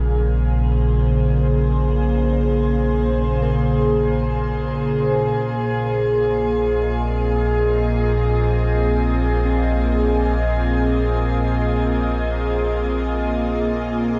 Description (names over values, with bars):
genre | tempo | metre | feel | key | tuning
ambient | free time | none | none | unclear | A4 = 444 Hz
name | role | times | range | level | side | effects
evolving wavetable pad | sustained chords | 0.0-14.2 s | Bb2 to Eb5 | -22 LUFS | equal | chorus, built-in reverb, phaser
bell-like tine electric piano | arpeggios | 0.0-14.2 s | Bb3 to C4 | -36 LUFS | equal | none
warm sub bass | bass | 0.0-14.2 s | Bb1 | -24 LUFS | equal | none
organ-like drone | drone | 0.0-14.2 s | Bb3 to F4 | -34 LUFS | equal | ensemble chorus, built-in reverb
room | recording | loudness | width
wet shimmer reverb, RT60 8.1 s | dark, warm production | -20 LUFS | mono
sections
0.0-14.2 A section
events
fade-in on synth drone 0.0-14.2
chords
0.0 Bbm7; 5.4 Abadd9/Bb